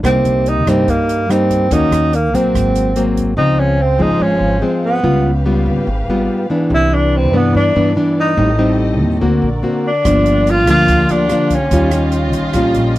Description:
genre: bossa nova.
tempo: 144 BPM.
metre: 4/4.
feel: straight.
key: C minor.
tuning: A4 = 438 Hz.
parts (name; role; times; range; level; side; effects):
nylon-string guitar; accompaniment; 0.0-13.0 s; G2 to Gb4; -15 LUFS; left 1 dB; none.
upright bass; bass; 0.0-13.0 s; G1 to G2; -18 LUFS; equal; none.
open jazz drum kit; drums; 0.0-3.3, 10.0-13.0 s; hi-hat, kick drum, rim click; -24 LUFS; equal; none.
breathy tenor saxophone; melody; 0.1-12.2 s; Bb3 to F4; -16 LUFS; right 1 dB; none.
dark studio string section; sustained chords; 3.4-13.0 s; Bb3 to F5; -27 LUFS; right 1 dB; none.
rich chamber violin section; second line; 10.1-13.0 s; F4; -25 LUFS; right 3 dB; none.
room: little or no reverb.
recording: dry, close 1970s-style studio recording.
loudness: -12 LUFS.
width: side -15 dB against mid.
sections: 0.0-3.4 A section; 3.4-13.0 B section.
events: none.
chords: 0.0 Cm7; 1.7 Ebm7; 2.5 Ab9; 3.4 Dbmaj7; 5.0 Db7#11; 6.7 Cmaj9; 8.4 Am7b5; 9.2 Daug7; 10.0 Gm7; 11.7 Eb9.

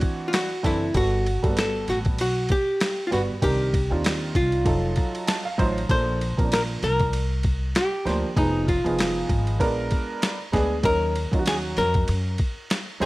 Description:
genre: hip hop, jazz-hop.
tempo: 97 BPM.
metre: 4/4.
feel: swing 57% on 16ths.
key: unclear.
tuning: A4 = 439 Hz.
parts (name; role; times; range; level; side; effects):
archtop guitar, miked and amplified; melody; 0.0-13.1 s; Eb4 to C5; -26 LUFS; equal; none.
dark upright piano; accompaniment; 0.0-13.1 s; Eb3 to A5; -27 LUFS; right 2 dB; none.
boom bap sampler-style drum kit; drums; 0.0-13.1 s; hi-hat, kick drum, ride cymbal, snare drum; -26 LUFS; equal; none.
upright bass; bass; 0.6-13.1 s; F1 to Gb2; -26 LUFS; equal; none.
room: digital ambience.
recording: none.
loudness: -21 LUFS.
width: side -20 dB against mid.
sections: 0.0-13.1 A section.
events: upright piano fill 5.0-5.9.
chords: 0.0 D9; 0.9 Gmaj9; 3.4 Cm9; 4.7 F7b9; 5.9 Bb; 8.4 Fm7b5; 9.6 Bb7b9; 10.8 Ebm7.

